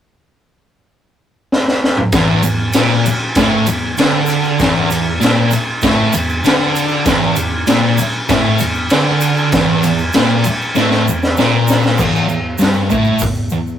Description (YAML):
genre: garage rock duo or trio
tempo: 97 BPM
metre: 4/4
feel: straight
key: unclear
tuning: A4 = 439 Hz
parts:
  - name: raw garage drum kit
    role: drums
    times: 1.5-13.4 s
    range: crash cymbal, hi-hat, kick drum, ride cymbal, snare drum, toms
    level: -15 LUFS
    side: equal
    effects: none
  - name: fuzz guitar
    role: riff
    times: 2.1-13.8 s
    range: E2 to D3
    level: -14 LUFS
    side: equal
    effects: distortion
  - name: egg shaker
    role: percussion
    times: 2.1-13.7 s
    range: none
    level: -29 LUFS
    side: right 6 dB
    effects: none
room: moderate stone room reverb, RT60 1.1 s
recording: rough rehearsal-room recording, tube saturation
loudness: -12 LUFS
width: side -9 dB against mid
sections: 0.0-2.1 A section; 2.1-12.0 B section; 12.0-13.8 C section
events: drum fill 1.5-2.1, 10.7-12.0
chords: none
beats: 0.26 0.88 1.50 | 2.12 2.74 3.36 3.98 | 4.59 5.21 5.82 6.44 | 7.06 7.67 8.29 8.90 | 9.52 10.13 10.75 11.36 | 11.98 12.60 13.21